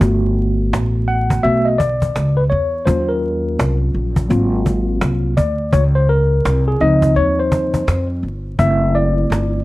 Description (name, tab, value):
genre	hip hop, jazz-hop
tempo	84 BPM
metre	4/4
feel	swing 62% on 16ths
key	unclear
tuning	A4 = 444 Hz
part	tine electric piano	accompaniment	0.0-9.6 s	E#3 to F#5	-18 LUFS	left 1 dB	medium stereo tremolo
part	upright bass	bass	0.0-9.6 s	F#1 to E#2	-17 LUFS	equal	none
part	cajon	drums	0.0-9.6 s	none	-20 LUFS	equal	none
room	studio reverb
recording	dry, close 1970s-style studio recording, vinyl crackle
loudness	-14 LUFS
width	side -18 dB against mid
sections	0.0-9.6 A section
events	tine electric piano solo 0.0-9.6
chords	0.0 Gmaj9; 2.9 D#m7; 4.3 G#13; 5.7 C#maj9; 8.6 F#m7b5